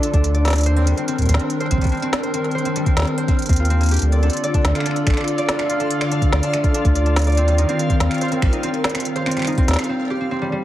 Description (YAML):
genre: IDM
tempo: 143 BPM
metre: 4/4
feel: straight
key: C dorian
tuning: A4 = 439 Hz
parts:
  - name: hollow soft pad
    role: sustained chords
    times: 0.0-9.9 s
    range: D3 to D5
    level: -25 LUFS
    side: equal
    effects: ensemble chorus
  - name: concert harp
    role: arpeggios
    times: 0.0-10.6 s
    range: G3 to D5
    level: -23 LUFS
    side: equal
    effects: vintage 12-bit sampler grit, digital delay
  - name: organic electronic drum kit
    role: drums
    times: 0.0-9.9 s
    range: finger snaps, hi-hat, snare drum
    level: -26 LUFS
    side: equal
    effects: digital delay
  - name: warm sub bass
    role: bass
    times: 0.1-9.8 s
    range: A1 to Eb2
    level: -17 LUFS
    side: equal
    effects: none
  - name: electronic kick drum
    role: drums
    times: 0.1-9.7 s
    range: none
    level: -18 LUFS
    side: equal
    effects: none
  - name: backwards swelling texture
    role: texture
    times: 5.2-9.9 s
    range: F4 to F5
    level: -30 LUFS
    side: left 1 dB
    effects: built-in reverb
room: light reverb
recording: heavily compressed radio sound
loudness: -16 LUFS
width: side -13 dB against mid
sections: 0.0-10.6 A section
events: break 9.9-10.6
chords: 0.0 Dm; 0.7 Cm7; 4.0 Dm; 7.4 Cm7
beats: 0.24 | 0.66 1.08 1.50 1.92 | 2.34 2.76 3.18 3.60 | 4.02 4.44 4.86 5.28 | 5.70 6.12 6.53 6.95 | 7.37 7.79 8.21 8.63 | 9.05 9.47 9.89 10.31